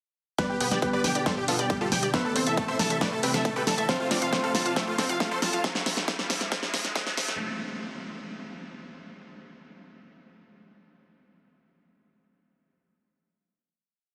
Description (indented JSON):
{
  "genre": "uplifting trance",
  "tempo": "137 BPM",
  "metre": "4/4",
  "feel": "straight",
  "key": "A minor",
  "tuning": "A4 = 440 Hz",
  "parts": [
    { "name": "dense compressed supersaw", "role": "melody", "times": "0.4-5.6 s", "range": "F4 to F5", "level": "-34 LUFS", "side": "equal", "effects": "sidechain pumping, dub echo" },
    { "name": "warm grand piano", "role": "second line", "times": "0.4-4.9 s", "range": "B3 to C5", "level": "-37 LUFS", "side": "equal", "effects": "delay" },
    { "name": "analog string pad", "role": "sustained chords", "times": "0.4-7.4 s", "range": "B2 to A4", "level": "-40 LUFS", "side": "equal", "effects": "ensemble chorus, sidechain pumping" },
    { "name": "unison pluck", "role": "arpeggios", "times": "0.4-5.6 s", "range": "G3 to A5", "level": "-35 LUFS", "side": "equal", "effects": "sidechain pumping, dub echo" },
    { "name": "big-room dance drum kit", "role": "drums", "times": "0.4-7.4 s", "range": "hi-hat, snare drum", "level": "-32 LUFS", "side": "equal", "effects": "studio reverb" },
    { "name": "electronic kick drum", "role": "drums", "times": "0.4-7.0 s", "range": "none", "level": "-34 LUFS", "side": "equal", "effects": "high-pass filter on kick, studio reverb" },
    { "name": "riser", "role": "sound effects", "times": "4.5-7.4 s", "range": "none", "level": "-42 LUFS", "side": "equal", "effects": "none" },
    { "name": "plucky analog bass", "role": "bass", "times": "0.5-5.6 s", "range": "F1 to A1", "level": "-42 LUFS", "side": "equal", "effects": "none" }
  ],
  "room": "moderate huge ambient reverb, RT60 7.2 s",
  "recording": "dense, heavily limited modern master, high-pass filter",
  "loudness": "-27 LUFS",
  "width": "mono",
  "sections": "0.4-7.4 build",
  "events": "build-up 0.4-7.4; drum fill 0.4-7.4; filter sweep 0.4-7.4",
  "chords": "0.4 G; 2.1 Am; 3.9 F; 5.6 Am"
}